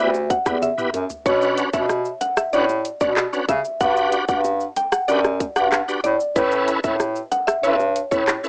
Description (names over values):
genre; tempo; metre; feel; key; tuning
dancehall; 94 BPM; 4/4; straight; B minor; A4 = 440 Hz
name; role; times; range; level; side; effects
mallet-like synth pluck; melody; 0.0-8.2 s; B4 to G5; -25 LUFS; equal; chorus, cassette tape
bright tonewheel organ; accompaniment; 0.0-8.5 s; B3 to B4; -26 LUFS; equal; overdrive, chorus vibrato, fast rotary speaker, cassette tape
clear bass clarinet; bass; 0.0-8.4 s; D2 to C#3; -24 LUFS; equal; none
island pop drum kit; drums; 0.1-8.5 s; handclaps, hi-hat, kick drum, rim click, shaker, toms; -27 LUFS; equal; cassette tape
bongos; percussion; 0.1-8.4 s; none; -37 LUFS; equal; none
room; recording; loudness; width
light reverb; home recording on cassette, small speaker sound; -21 LUFS; mono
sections
0.0-8.5 A section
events
drum fill 0.6-1.3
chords
0.0 Em; 1.3 Bmadd9; 3.8 Gmaj7; 6.4 Aadd9